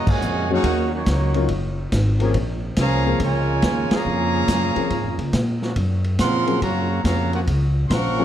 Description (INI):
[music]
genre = jazz, big band swing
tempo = 141 BPM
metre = 4/4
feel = swing 66% on 8ths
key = Bb minor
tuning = A4 = 439 Hz
[part]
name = clear trumpet section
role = melody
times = 0.0-8.2 s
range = Bb3 to Db6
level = -25 LUFS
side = right 1 dB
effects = none
[part]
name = clear trombone section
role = second line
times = 0.0-8.2 s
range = Bb2 to Gb4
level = -25 LUFS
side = right 2 dB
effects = none
[part]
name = upright bass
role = bass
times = 0.0-8.2 s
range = Gb1 to Bb2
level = -22 LUFS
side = equal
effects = none
[part]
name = vintage drum kit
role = drums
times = 0.1-8.0 s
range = crash cymbal, hi-hat, kick drum, ride cymbal, snare drum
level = -26 LUFS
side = equal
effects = none
[part]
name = warm baby grand piano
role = accompaniment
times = 0.5-8.2 s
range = F3 to Bb4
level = -27 LUFS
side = left 5 dB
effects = none
[part]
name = brilliant trombone section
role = sustained chords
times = 2.2-7.4 s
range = F3 to Ab4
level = -35 LUFS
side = left 1 dB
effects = none
[sound]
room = light reverb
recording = dark, warm production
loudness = -18 LUFS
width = side -11 dB against mid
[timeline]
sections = 0.0-8.2 A section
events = band accent 0.0, 3.8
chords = 0.0 Ebm7; 2.4 Bbm7; 5.8 Gbmaj7